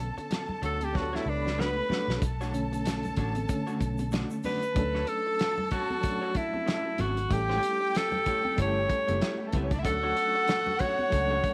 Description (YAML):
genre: lush 1970s-style soul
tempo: 94 BPM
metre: 4/4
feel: swing 58% on 16ths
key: unclear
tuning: A4 = 440 Hz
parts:
  - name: warm studio violin section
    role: second line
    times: 0.0-11.5 s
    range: G3 to B5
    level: -40 LUFS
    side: equal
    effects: none
  - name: reed electric piano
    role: accompaniment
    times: 0.0-11.5 s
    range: D3 to C#5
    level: -38 LUFS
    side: equal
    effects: fast tremolo
  - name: electric guitar through a small old amp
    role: riff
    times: 0.0-11.5 s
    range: A3 to E5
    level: -42 LUFS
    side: equal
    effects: none
  - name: vintage muted fingered electric bass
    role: bass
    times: 0.0-11.4 s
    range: F#1 to D2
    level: -35 LUFS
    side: equal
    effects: none
  - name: warm soul drum kit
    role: drums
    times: 0.2-11.5 s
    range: hi-hat, kick drum, snare drum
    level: -35 LUFS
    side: equal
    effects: none
  - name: congas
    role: percussion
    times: 0.3-11.1 s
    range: none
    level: -43 LUFS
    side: equal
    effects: none
  - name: bright alto saxophone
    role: melody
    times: 0.6-11.5 s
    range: D4 to C#5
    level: -31 LUFS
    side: equal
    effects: none
  - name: tube shaker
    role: percussion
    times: 2.2-4.8 s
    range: none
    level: -58 LUFS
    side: equal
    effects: none
room: light reverb, studio reverb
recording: none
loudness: -29 LUFS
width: mono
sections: 0.0-2.2 A section; 2.2-4.8 B section; 4.8-11.5 C section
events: alto saxophone solo 0.0-2.2; drum fill 0.9-2.2; reed electric piano solo 2.2-4.8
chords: 0.0 Bm9; 4.8 Dmaj7; 7.3 A7; 9.8 Dmaj7